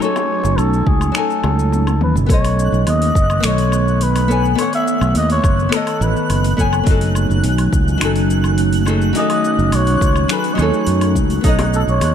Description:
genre	sunset chillout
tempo	105 BPM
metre	4/4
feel	straight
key	F# dorian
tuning	A4 = 441 Hz
part	trumpet with cup mute	melody	0.0-12.1 s	G#4 to E5	-21 LUFS	equal	tape echo, shimmer reverb
part	nylon-string guitar	accompaniment	0.0-12.1 s	F#3 to G#5	-21 LUFS	moving between left 6 dB and right 6 dB	auto-pan, tape echo, shimmer reverb
part	ethereal airy pad	sustained chords	0.0-12.1 s	D#3 to G#5	-22 LUFS	equal	ensemble chorus, built-in reverb
part	deep house drum kit	drums	0.0-12.1 s	finger snaps, hi-hat, shaker, toms, woodblock	-26 LUFS	left 1 dB	overdrive, studio reverb
part	bongos	percussion	0.2-1.6, 11.6-12.1 s	none	-30 LUFS	left 4 dB	none
part	fingered electric bass	bass	0.4-12.1 s	F#1 to F#2	-17 LUFS	equal	none
part	electronic kick drum	drums	0.9-11.6 s	none	-16 LUFS	equal	overdrive, studio reverb
part	twinkling granular texture	texture	2.6-12.1 s	F#6	-28 LUFS	right 1 dB	built-in reverb, shimmer reverb
part	Celtic harp	arpeggios	11.4-12.1 s	D#4	-25 LUFS	right 5 dB	tape echo, shimmer reverb
room	light reverb, small room ambience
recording	dark, warm production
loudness	-13 LUFS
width	side -9 dB against mid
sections	0.0-2.3 A section; 2.3-12.1 B section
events	kick drops out 1.7-2.3; drum fill 1.7-2.3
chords	0.0 F#m69

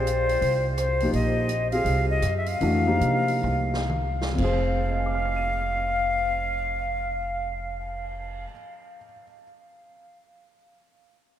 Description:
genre	modal jazz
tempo	118-169 BPM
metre	4/4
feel	swing 63% on 8ths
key	F dorian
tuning	A4 = 440 Hz
part	breathy bright concert flute	melody	0.0-8.5 s	C5 to F5	-27 LUFS	left 1 dB	none
part	warm grand piano	accompaniment	0.0-9.4 s	F2 to Eb7	-28 LUFS	left 1 dB	none
part	upright bass	bass	0.0-8.4 s	F1 to C3	-28 LUFS	right 1 dB	none
part	swinging big-band drum kit	drums	0.1-8.3 s	crash cymbal, cymbal swell, hi-hat, kick drum, rim click, snare drum, toms	-38 LUFS	right 1 dB	none
room	wet cathedral reverb, RT60 5.6 s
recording	in a vast, echoing space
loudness	-22 LUFS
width	side -11 dB against mid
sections	0.0-4.4 A section; 4.4-8.5 B section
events	slowing down 1.1-4.4; drum fill 3.4-4.4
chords	0.0 F9sus4; 4.4 Fm

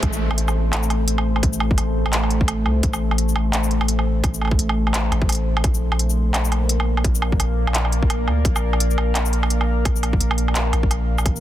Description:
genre	half-time drum and bass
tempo	171 BPM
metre	4/4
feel	swing 59% on 16ths, half-time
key	A phrygian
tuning	A4 = 439 Hz
part	deep dark ambient pad	sustained chords	0.0-11.4 s	A3 to F5	-26 LUFS	left 2 dB	chorus, built-in reverb, sidechain pumping
part	long sustained 808-style bass	bass	0.0-11.4 s	A1 to D2	-20 LUFS	equal	high-pass filter
part	electronic kick drum	drums	0.0-11.3 s	none	-21 LUFS	equal	overdrive, high-pass filter on kick, high-pass filter on room
part	organic electronic drum kit	drums	0.0-11.4 s	handclaps, hi-hat, shaker, woodblock	-24 LUFS	right 1 dB	overdrive, high-pass filter on hats, high-pass filter on snare, high-pass filter on perc, high-pass filter on room
room	little or no reverb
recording	dense, heavily limited modern master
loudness	-18 LUFS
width	side -13 dB against mid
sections	0.0-11.4 A section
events	drop 0.0-11.4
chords	0.0 Am; 5.6 Bb

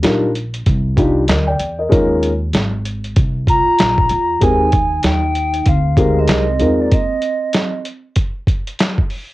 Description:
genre	hip hop, jazz-hop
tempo	96 BPM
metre	4/4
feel	swing 61% on 16ths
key	unclear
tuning	A4 = 439 Hz
part	dark grand piano	accompaniment	0.0-6.9 s	G3 to G5	-16 LUFS	left 1 dB	cassette tape
part	upright bass	bass	0.0-6.9 s	Ab1 to Fb2	-19 LUFS	equal	none
part	lo-fi sampler-style drum kit	drums	0.0-9.3 s	hi-hat, kick drum, snare drum	-17 LUFS	equal	none
part	mellow hollow concert flute	melody	3.5-7.9 s	D5 to Bb5	-18 LUFS	equal	none
part	vibraphone with soft mallets	second line	3.5-7.9 s	Bb3 to F4	-24 LUFS	right 4 dB	cassette tape
room	light reverb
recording	home recording on cassette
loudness	-13 LUFS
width	side -18 dB against mid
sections	0.0-9.3 A section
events	break 6.9-9.3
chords	0.0 Ebmaj9; 1.9 Db69; 4.4 Abmaj9/Eb; 6.9 N.C.

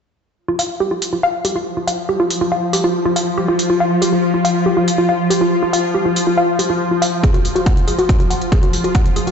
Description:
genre	driving peak-time techno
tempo	140 BPM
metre	4/4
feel	straight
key	unclear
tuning	A4 = 440 Hz
part	swarming drone	drone	1.1-9.3 s	F3 to F4	-18 LUFS	left 1 dB	built-in reverb, sidechain pumping
part	woody wave-folded pluck	riff	0.5-9.3 s	F4 to Gb5	-18 LUFS	equal	chorus, cassette tape, sidechain pumping, dub echo
part	electronic hi-hat	drums	0.6-9.3 s	none	-24 LUFS	right 1 dB	overdrive, small room ambience
part	electronic kick drum	drums	7.2-9.0 s	none	-14 LUFS	equal	overdrive, small room ambience
room	moderate plate reverb, RT60 1.3 s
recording	played on a big sound system in a bare room, stone room reverb, nothing above 8.0 kHz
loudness	-14 LUFS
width	side -7 dB against mid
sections	0.4-9.3 A section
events	filter sweep on synth arpeggio sound 0.4-9.3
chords	0.4 Fsus2; 7.2 N.C.

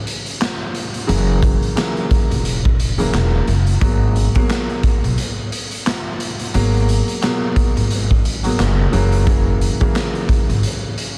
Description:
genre	hip hop, boom-bap hip-hop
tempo	88 BPM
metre	4/4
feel	swing 58% on 16ths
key	unclear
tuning	A4 = 440 Hz
part	warm upright piano	accompaniment	0.0-11.2 s	B2 to A#3	-25 LUFS	equal	cassette tape, high-pass filter, low-pass filter
part	raw garage drum kit	drums	0.1-11.2 s	handclaps, hi-hat, kick drum, snare drum	-21 LUFS	equal	vintage 12-bit sampler grit
part	upright bass	bass	1.1-10.6 s	E1 to B1	-20 LUFS	equal	none
room	little or no reverb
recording	dense, heavily limited modern master, vinyl crackle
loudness	-18 LUFS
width	mono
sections	0.0-11.2 A section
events	none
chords	0.0 F#7; 3.8 G#m9; 8.9 F#7

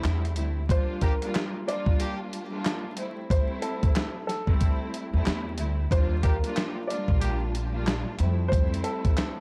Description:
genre	hip hop, boom-bap hip-hop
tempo	92 BPM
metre	4/4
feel	swing 60% on 16ths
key	unclear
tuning	A4 = 439 Hz
part	warm studio string section	accompaniment	0.0-9.4 s	G3 to F4	-36 LUFS	equal	cassette tape, high-pass filter, low-pass filter
part	upright bass	bass	0.0-8.8 s	Bb1 to F2	-29 LUFS	equal	none
part	dusty soul sampler-style drum kit	drums	0.0-9.4 s	handclaps, hi-hat, kick drum, snare drum	-28 LUFS	equal	none
part	warm upright piano	melody	0.7-9.4 s	A4 to D5	-35 LUFS	equal	high-pass filter, low-pass filter
part	warm horn section	stabs	1.0-2.2, 6.2-7.4 s	Bb3 to G4	-42 LUFS	equal	high-pass filter, low-pass filter, digital delay
room	little or no reverb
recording	dark, warm production, vinyl crackle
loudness	-27 LUFS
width	mono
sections	0.0-9.4 A section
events	none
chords	0.0 Fmaj9 (rootless); 0.7 Gm7; 3.0 Fmaj9 (rootless); 5.9 Ebmaj9; 8.2 Fmaj9

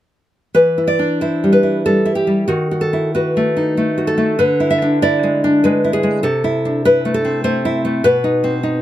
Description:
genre	romantic piece for solo classical guitar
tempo	91-102 BPM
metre	3/4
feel	rubato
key	E minor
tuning	A4 = 441 Hz
part	nylon-string guitar	solo	0.5-8.8 s	B2 to E5	-13 LUFS	equal	none
room	light reverb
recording	close, detailed microphones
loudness	-13 LUFS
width	side -13 dB against mid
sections	0.6-8.8 A section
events	none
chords	0.6 Em; 2.5 B7/D#; 4.4 E7/D; 6.2 Am/C; 8.0 B

